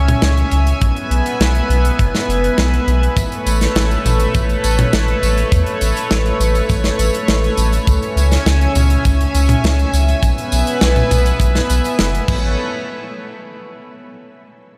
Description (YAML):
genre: synthwave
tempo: 102 BPM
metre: 4/4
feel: straight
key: A major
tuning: A4 = 441 Hz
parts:
  - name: chorused pulse-width pad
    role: sustained chords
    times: 0.0-12.6 s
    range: A3 to G#5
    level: -22 LUFS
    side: equal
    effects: sidechain pumping, shimmer reverb
  - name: round analog bass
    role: bass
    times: 0.0-12.6 s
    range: F#1 to E2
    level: -18 LUFS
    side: equal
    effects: sidechain pumping
  - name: tight metal drum kit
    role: drums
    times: 0.1-12.4 s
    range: crash cymbal, hi-hat, snare drum, tambourine, toms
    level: -23 LUFS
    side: equal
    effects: none
  - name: kick drum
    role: drums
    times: 0.8-12.4 s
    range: none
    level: -20 LUFS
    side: equal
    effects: none
room: moderate cathedral reverb, RT60 5.2 s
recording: dreamy mix soaked in reverb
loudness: -16 LUFS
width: mono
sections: 0.0-12.6 A section; 12.6-14.8 B section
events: none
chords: 0.0 C#m; 0.8 E/B; 3.2 Aadd9; 7.9 C#m; 10.2 E/B; 12.3 Aadd9; 12.6 N.C.